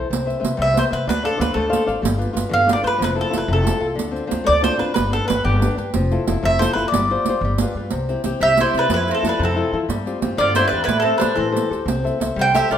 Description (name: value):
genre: italian folk, Italian serenade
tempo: 122 BPM (dotted quarters)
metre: 6/8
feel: straight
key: C major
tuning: A4 = 440 Hz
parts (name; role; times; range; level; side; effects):
- flamenco guitar; accompaniment; 0.0-12.8 s; C3 to F5; -24 LUFS; left 4 dB; none
- upright bass; bass; 0.0-12.8 s; F1 to F3; -24 LUFS; equal; none
- riq; percussion; 0.1-12.8 s; none; -25 LUFS; right 5 dB; none
- mandolin; melody; 0.6-12.8 s; G4 to G5; -20 LUFS; equal; none
- mandolin; second line; 8.4-12.8 s; C4 to C5; -23 LUFS; right 3 dB; none
room: wet recital hall reverb, RT60 1.6 s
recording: minimal, uncompressed stereo recording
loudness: -17 LUFS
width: side -9 dB against mid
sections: 0.1-12.8 A section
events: none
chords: 0.1 Cmaj7; 1.1 Dm7; 2.0 G7; 3.0 Fmaj7; 4.0 Dm7; 5.0 G; 5.9 Fmaj7; 6.9 G7sus4; 7.4 G7; 7.9 C; 8.9 Fmaj7; 9.9 G7sus4; 10.9 Am7; 11.9 C6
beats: | 0.12 0.60 | 1.08 1.57 | 2.05 2.53 | 3.01 3.50 | 3.99 4.47 | 4.96 5.45 | 5.94 6.43 | 6.92 7.41 | 7.91 8.41 | 8.90 9.40 | 9.89 10.39 | 10.88 11.38 | 11.88 12.37